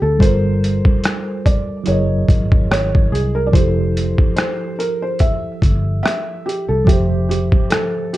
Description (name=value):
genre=lo-fi hip hop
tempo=72 BPM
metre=4/4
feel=swing 56% on 16ths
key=F major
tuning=A4 = 440 Hz
part: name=felt-muted upright piano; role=melody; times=0.0-8.2 s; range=G4 to E5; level=-22 LUFS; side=equal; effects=plate reverb, tape echo
part: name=tine electric piano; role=accompaniment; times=0.0-8.2 s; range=D3 to E5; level=-22 LUFS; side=right 2 dB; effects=medium stereo tremolo, cassette tape
part: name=vintage muted fingered electric bass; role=bass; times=0.0-7.5 s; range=F1 to D2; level=-18 LUFS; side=equal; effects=none
part: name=trip hop sampler-style drum kit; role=drums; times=0.2-8.2 s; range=hi-hat, kick drum, rim click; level=-15 LUFS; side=equal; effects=none
room=light reverb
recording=dark, warm production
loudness=-14 LUFS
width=side -16 dB against mid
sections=0.0-8.2 A section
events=none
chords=0.2 Gm9; 1.9 Gb13; 3.5 Fmaj9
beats=| 0.20 1.04 1.87 2.70 | 3.54 4.37 5.20 6.04 | 6.87 7.70